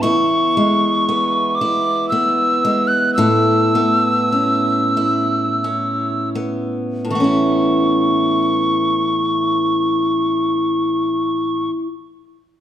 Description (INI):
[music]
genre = celtic folk, Celtic slow air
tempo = 38-58 BPM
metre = 3/4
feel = rubato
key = A major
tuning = A4 = 442 Hz
[part]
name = mellow tin whistle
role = melody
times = 0.0-11.7 s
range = C#6 to F#6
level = -18 LUFS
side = right 1 dB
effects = none
[part]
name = picked steel-string acoustic guitar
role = accompaniment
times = 0.0-11.9 s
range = E2 to E4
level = -17 LUFS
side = equal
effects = none
[sound]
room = moderate recital hall reverb, RT60 1.5 s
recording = dark, warm production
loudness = -15 LUFS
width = side -10 dB against mid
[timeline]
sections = 0.0-7.1 A section; 7.1-11.8 B section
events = slowing down 0.0-7.1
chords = 0.0 E; 3.2 Aadd9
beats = | 0.04 1.09 2.12 | 3.18 4.33 5.63 | 7.12 8.66 10.20